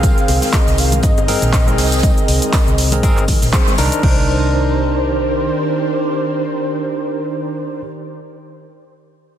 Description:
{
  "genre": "deep house",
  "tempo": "120 BPM",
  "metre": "4/4",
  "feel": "swing 56% on 16ths",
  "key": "C minor",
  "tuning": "A4 = 440 Hz",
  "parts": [
    { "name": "breathy flute-like synth lead", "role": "melody", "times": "0.0-7.8 s", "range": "C5 to F5", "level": "-23 LUFS", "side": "equal", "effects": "ensemble chorus, dub echo" },
    { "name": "soft string machine", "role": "sustained chords", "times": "0.0-7.8 s", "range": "Eb3 to D5", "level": "-25 LUFS", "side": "equal", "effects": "ensemble chorus, vintage 12-bit sampler grit, sidechain pumping" },
    { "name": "barky tine electric piano", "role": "stabs", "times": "0.0-7.8 s", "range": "C4 to C5", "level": "-21 LUFS", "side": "right 1 dB", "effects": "fast stereo tremolo, sidechain pumping, dub echo" },
    { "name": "vintage muted fingered electric bass", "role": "bass", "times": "0.0-5.5 s", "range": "G1 to C2", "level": "-18 LUFS", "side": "equal", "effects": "sidechain pumping" },
    { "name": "deep house drum kit", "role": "drums", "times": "0.0-4.1 s", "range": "crash cymbal, handclaps, hi-hat, shaker", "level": "-22 LUFS", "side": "equal", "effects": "overdrive" },
    { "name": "electronic kick drum", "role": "drums", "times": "0.0-4.1 s", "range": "none", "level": "-15 LUFS", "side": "equal", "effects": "overdrive" },
    { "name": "street-band drum kit", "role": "drums", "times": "0.0-3.9 s", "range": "hi-hat, snare drum, tambourine", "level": "-29 LUFS", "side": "right 1 dB", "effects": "sidechain pumping on hats, high-pass filter on hats, high-pass filter on snare, sidechain pumping on perc, high-pass filter on perc, high-pass filter on room" },
    { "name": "congas and bongos", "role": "percussion", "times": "0.0-3.9 s", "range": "none", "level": "-28 LUFS", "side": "left 3 dB", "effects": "none" }
  ],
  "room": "light reverb, small room ambience",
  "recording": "dense, heavily limited modern master",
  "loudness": "-13 LUFS",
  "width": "side -10 dB against mid",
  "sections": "0.0-4.0 A section; 4.0-8.0 B section",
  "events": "drop 0.0-4.0; band accent 3.5",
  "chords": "0.0 Cm7; 4.0 Cm9"
}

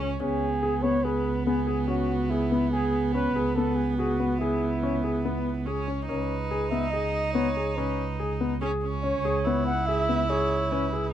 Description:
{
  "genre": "contemporary instrumental, chamber music in an uneven meter",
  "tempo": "142 BPM",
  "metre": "7/4",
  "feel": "straight",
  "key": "C# minor",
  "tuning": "A4 = 440 Hz",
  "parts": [
    { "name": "rich viola", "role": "second line", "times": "0.0-11.1 s", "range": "B3 to E4", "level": "-29 LUFS", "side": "right 1 dB", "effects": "none" },
    { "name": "warm grand piano", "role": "arpeggios", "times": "0.0-11.0 s", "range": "B3 to G#4", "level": "-29 LUFS", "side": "left 4 dB", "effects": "none" },
    { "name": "warm double bass", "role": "bass", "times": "0.0-11.1 s", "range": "C#2", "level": "-30 LUFS", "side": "right 3 dB", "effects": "none" },
    { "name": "breathy flugelhorn", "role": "melody", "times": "0.2-11.1 s", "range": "E4 to F#5", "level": "-30 LUFS", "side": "right 2 dB", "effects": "none" }
  ],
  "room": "light reverb",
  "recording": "dark, warm production",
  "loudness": "-24 LUFS",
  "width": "side -10 dB against mid",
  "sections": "0.0-11.1 A section",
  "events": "none",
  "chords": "0.0 C#m7"
}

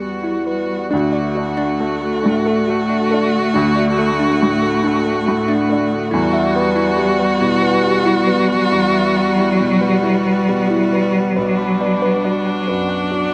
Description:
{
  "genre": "neoclassical piano and strings",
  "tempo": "46 BPM (dotted quarters)",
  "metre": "6/8",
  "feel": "rubato",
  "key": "unclear",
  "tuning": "A4 = 441 Hz",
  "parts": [
    { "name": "warm cello", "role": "second line", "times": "0.0-13.3 s", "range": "F#3 to A3", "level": "-22 LUFS", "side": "equal", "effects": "none" },
    { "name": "clear viola", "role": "accompaniment", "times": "0.0-13.3 s", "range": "D4 to F#4", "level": "-23 LUFS", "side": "equal", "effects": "slapback echo" },
    { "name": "warm baby grand piano", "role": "accompaniment", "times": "0.0-13.3 s", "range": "B1 to F#4", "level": "-24 LUFS", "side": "equal", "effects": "none" },
    { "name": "pedal harmonium", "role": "sustained chords", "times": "0.0-13.3 s", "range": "G3 to F#5", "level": "-27 LUFS", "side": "equal", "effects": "none" },
    { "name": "harp-like synth pluck", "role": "arpeggios", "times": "0.0-13.2 s", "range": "D4 to B5", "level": "-23 LUFS", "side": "equal", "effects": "chorus" }
  ],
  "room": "little or no reverb",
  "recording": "recorded outdoors, with no room sound",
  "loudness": "-17 LUFS",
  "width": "mono",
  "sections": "0.9-13.3 A section",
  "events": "none",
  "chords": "0.0 Emadd9; 0.9 D; 6.1 Emadd9; 11.4 Bm"
}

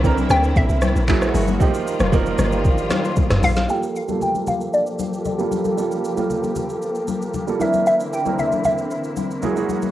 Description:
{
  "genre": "amapiano",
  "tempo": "115 BPM",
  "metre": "4/4",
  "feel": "straight",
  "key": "G minor",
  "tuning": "A4 = 441 Hz",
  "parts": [
    { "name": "hollow square pluck", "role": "melody", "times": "0.0-9.7 s", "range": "D5 to Bb5", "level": "-22 LUFS", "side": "equal", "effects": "chorus, low-pass filter, cassette tape, analog delay, plate reverb" },
    { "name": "clear baby grand piano", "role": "accompaniment", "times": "0.0-9.9 s", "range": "E3 to Bb4", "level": "-25 LUFS", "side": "right 6 dB", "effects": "low-pass filter, cassette tape, plate reverb" },
    { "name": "clear studio string section", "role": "sustained chords", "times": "0.0-9.9 s", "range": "D3 to A4", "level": "-26 LUFS", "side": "left 1 dB", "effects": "low-pass filter, cassette tape" },
    { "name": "deep log drum bass", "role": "bass", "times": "0.0-3.7 s", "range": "F1 to D2", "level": "-21 LUFS", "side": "equal", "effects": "none" },
    { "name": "smooth R&B drum kit", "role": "drums", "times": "0.0-9.9 s", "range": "handclaps, hi-hat, kick drum, rim click, shaker, snare drum, toms", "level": "-22 LUFS", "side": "equal", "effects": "cassette tape" },
    { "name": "congas", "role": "percussion", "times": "0.0-9.9 s", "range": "none", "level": "-26 LUFS", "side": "left 6 dB", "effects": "none" }
  ],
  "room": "moderate small room reverb, RT60 0.5 s",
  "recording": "home recording on cassette",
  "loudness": "-18 LUFS",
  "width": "side -13 dB against mid",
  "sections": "0.0-3.7 A section; 3.7-9.9 B section",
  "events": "drop 0.0-3.7; filter sweep 3.7-9.9",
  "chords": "0.0 C9; 1.1 F#9; 1.6 F9sus4; 3.7 Gm9; 7.6 C9"
}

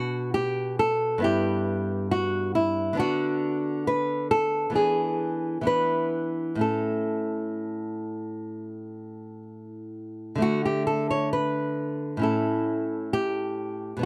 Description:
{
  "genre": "classical, baroque-style dance for nylon-string guitar",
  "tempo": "65 BPM",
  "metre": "4/4",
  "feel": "uneven beats, rubato",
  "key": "A major from 3.0 s",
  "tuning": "A4 = 440 Hz",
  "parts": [
    { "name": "nylon-string guitar", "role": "solo", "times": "0.0-14.1 s", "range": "G2 to C#5", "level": "-27 LUFS", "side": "equal", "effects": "none" }
  ],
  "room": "light reverb",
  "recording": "none",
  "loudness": "-27 LUFS",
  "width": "mono",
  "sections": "0.0-10.4 A section; 10.4-14.1 A section",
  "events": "none",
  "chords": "0.0 Bm; 1.2 Em/G; 3.0 Bm/D; 4.8 E7; 6.6 A; 10.4 D5; 12.2 A"
}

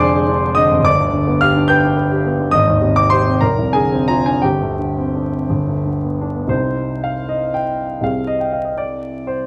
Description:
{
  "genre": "classical, romantic character piece for solo piano",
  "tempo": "56-82 BPM (dotted quarters)",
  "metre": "6/8",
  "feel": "rubato",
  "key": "C minor",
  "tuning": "A4 = 438 Hz",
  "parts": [
    { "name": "warm concert grand piano", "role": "solo", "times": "0.0-9.5 s", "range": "F1 to G6", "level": "-17 LUFS", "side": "equal", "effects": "none" }
  ],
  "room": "moderate large studio reverb, RT60 1.1 s",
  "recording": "vinyl crackle",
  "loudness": "-17 LUFS",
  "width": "mono",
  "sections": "0.0-6.5 A section; 6.5-9.5 B section",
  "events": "none",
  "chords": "0.0 Ddim/F; 0.9 G; 2.5 Abmaj7; 3.4 Dm7b5/F; 4.4 Gsus4; 5.5 G; 6.5 Cm; 8.0 Fm13/C"
}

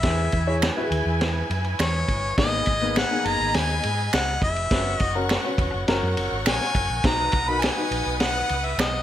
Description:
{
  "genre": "uptempo 1960s-style soul",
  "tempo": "103 BPM",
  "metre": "4/4",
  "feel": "straight",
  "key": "B major",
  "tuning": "A4 = 438 Hz",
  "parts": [
    { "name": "clear harmonica", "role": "melody", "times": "0.0-9.0 s", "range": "C#5 to B5", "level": "-25 LUFS", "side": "left 2 dB", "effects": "none" },
    { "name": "clear symphonic violin section", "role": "second line", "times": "0.0-9.0 s", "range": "E4 to D#6", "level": "-31 LUFS", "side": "equal", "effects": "none" },
    { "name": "warm upright piano", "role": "accompaniment", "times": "0.0-8.5 s", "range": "A#3 to C#5", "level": "-28 LUFS", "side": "left 3 dB", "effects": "none" },
    { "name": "bright large flute ensemble", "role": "sustained chords", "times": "0.0-9.0 s", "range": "C#5 to G#6", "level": "-35 LUFS", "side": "right 1 dB", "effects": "none" },
    { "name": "hollow-body short-scale fingered electric bass", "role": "bass", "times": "0.0-9.0 s", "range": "E1 to G#2", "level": "-27 LUFS", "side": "equal", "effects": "none" },
    { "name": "vintage drum kit", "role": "drums", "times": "0.0-8.9 s", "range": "kick drum, ride cymbal, snare drum", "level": "-26 LUFS", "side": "equal", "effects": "none" },
    { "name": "finger snaps", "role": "percussion", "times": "0.6-8.9 s", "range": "none", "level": "-30 LUFS", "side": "right 5 dB", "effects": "none" }
  ],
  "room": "moderate studio reverb, RT60 0.6 s",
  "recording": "none",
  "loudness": "-20 LUFS",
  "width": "side -11 dB against mid",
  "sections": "0.0-9.0 A section",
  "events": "none",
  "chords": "0.0 E; 2.4 G#madd9; 4.7 F#sus4; 5.9 F#; 7.0 B"
}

